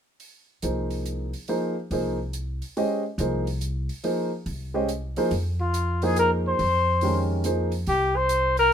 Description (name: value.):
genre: modal jazz.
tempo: 141 BPM.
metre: 3/4.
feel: swing 66% on 8ths.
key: F minor.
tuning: A4 = 441 Hz.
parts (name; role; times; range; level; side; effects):
hi-hat; drums; 0.2-8.6 s; none; -41 LUFS; right 5 dB; none.
warm baby grand piano; accompaniment; 0.6-7.7 s; Eb3 to Eb5; -26 LUFS; right 1 dB; none.
upright bass; bass; 0.6-8.7 s; C2 to F2; -27 LUFS; equal; none.
dark trumpet; melody; 5.6-8.7 s; F4 to C5; -22 LUFS; left 1 dB; none.
room: light reverb.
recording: minimal, uncompressed stereo recording.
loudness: -23 LUFS.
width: side -8 dB against mid.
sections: 0.2-5.3 A section; 5.3-8.7 B section.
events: none.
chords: 0.2 Fm11.